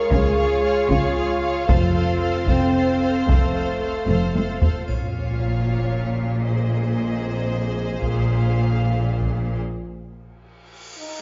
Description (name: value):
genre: cinematic, epic orchestral film score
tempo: 76 BPM (dotted quarters)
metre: 6/8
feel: straight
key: unclear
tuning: A4 = 440 Hz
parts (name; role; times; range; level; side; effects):
- warm symphonic violin section; melody; 0.0-9.6 s; Eb5 to F5; -37 LUFS; equal; none
- clear symphonic violin section; second line; 0.0-9.6 s; C5 to Db5; -34 LUFS; equal; none
- rich symphonic viola section; accompaniment; 0.0-9.6 s; F4 to A4; -35 LUFS; equal; none
- mellow French horn section; sustained chords; 0.0-11.2 s; F3 to Bb4; -28 LUFS; equal; none
- rich symphonic string section; sustained chords; 0.0-4.9 s; Ab3 to F5; -30 LUFS; equal; none
- clear symphonic cello section; bass; 0.1-9.6 s; F2 to Db3; -27 LUFS; equal; none
- warm studio double bass section; bass; 0.1-9.6 s; F1 to Db2; -28 LUFS; equal; none
- taiko ensemble; drums; 0.1-9.5 s; none; -25 LUFS; equal; none
- triangle; percussion; 4.9-5.9 s; none; -56 LUFS; equal; none
- sub drop and cymbal swell; sound effects; 4.9-6.5, 10.4-11.2 s; none; -35 LUFS; equal; none
room: wet recital hall reverb, RT60 1.6 s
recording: nothing above 7.6 kHz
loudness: -21 LUFS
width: mono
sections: 0.0-4.9 A section; 4.9-11.2 B section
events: drum fill 4.1-4.9; impact 4.9-6.5; break 9.6-11.2; cymbal swell 10.4-11.2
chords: 0.0 Db; 1.7 F; 4.9 Bbm; 6.5 Ab/Bb; 8.0 Fm/Bb; 9.6 N.C.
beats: | 0.12 0.90 | 1.69 2.48 | 3.28 4.08 | 4.88 5.67 | 6.46 7.24 | 8.02 8.81 | 9.61 10.42